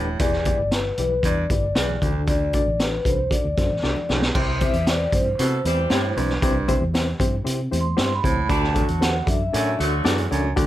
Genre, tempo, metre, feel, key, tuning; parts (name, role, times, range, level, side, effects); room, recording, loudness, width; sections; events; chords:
uptempo 1960s-style soul; 116 BPM; 4/4; straight; A4 = 440 Hz
dark horn section; second line; 0.0, 4.3-10.3 s; D3 to D5; -29 LUFS; right 1 dB
reed electric piano; accompaniment; 0.0-10.7 s; C3 to D5; -28 LUFS; left 3 dB; fast tremolo
raspy baritone saxophone; riff; 0.0-10.7 s; D2 to C3; -27 LUFS; right 4 dB
vintage muted fingered electric bass; bass; 0.0-10.7 s; Eb1 to C3; -25 LUFS; equal
vibraphone with soft mallets; melody; 0.2-9.8 s; B4 to C6; -26 LUFS; left 1 dB
raw garage drum kit; drums; 0.2-10.7 s; crash cymbal, hi-hat, kick drum, snare drum; -24 LUFS; equal
congas; percussion; 0.5-10.7 s; -37 LUFS; right 3 dB
light reverb; -19 LUFS; side -13 dB against mid
0.0-4.3 A section; 4.3-10.7 B section
drum fill 3.8-4.3
0.2 Em7; 2.0 D; 4.3 C; 8.5 D